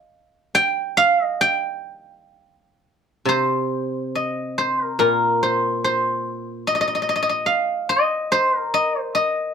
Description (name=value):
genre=chinese traditional, Chinese solo plucked strings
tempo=62-75 BPM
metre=4/4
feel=rubato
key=unclear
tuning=A4 = 441 Hz
part: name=guzheng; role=solo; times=0.0-9.5 s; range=Bb2 to G5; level=-18 LUFS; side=equal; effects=none
room=moderate studio reverb, RT60 0.5 s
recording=band playing live in one room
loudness=-18 LUFS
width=side -7 dB against mid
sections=0.0-3.3 A section; 3.3-9.5 B section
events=none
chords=none